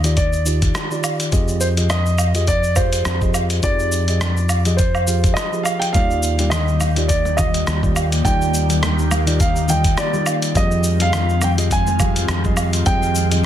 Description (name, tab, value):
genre	sunset chillout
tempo	104 BPM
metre	4/4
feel	swing 55% on 16ths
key	unclear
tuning	A4 = 440 Hz
part	dark grand piano	melody	0.0-13.5 s	C5 to Ab5	-23 LUFS	right 1 dB	tape echo
part	mellow tine electric piano	accompaniment	0.0-13.4 s	Eb3 to F5	-25 LUFS	equal	auto-pan, digital delay
part	fingered electric bass	bass	0.0-13.5 s	Eb2 to F2	-19 LUFS	equal	none
part	dusty soul sampler-style drum kit	drums	0.0-13.4 s	cabasa, hi-hat, rim click, woodblock	-23 LUFS	equal	soft clipping on snare
part	electronic kick drum	drums	0.2-13.0 s	none	-19 LUFS	equal	none
part	airy breathy pad	sustained chords	6.3-13.5 s	Eb3 to G4	-26 LUFS	left 1 dB	chorus, phaser
part	congas	percussion	6.0-13.5 s	none	-29 LUFS	left 2 dB	none
room	light reverb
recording	dense, heavily limited modern master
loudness	-15 LUFS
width	side -10 dB against mid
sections	0.0-13.5 A section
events	none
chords	0.0 Ebmaj7; 1.3 Fm7; 5.9 Ebmaj7; 10.6 Fm7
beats	0.17 0.75 | 1.33 1.90 2.48 3.06 | 3.63 4.21 4.79 5.37 | 5.94 6.52 7.10 7.67 | 8.25 8.83 9.40 9.98 | 10.56 11.13 11.71 12.29 | 12.87 13.44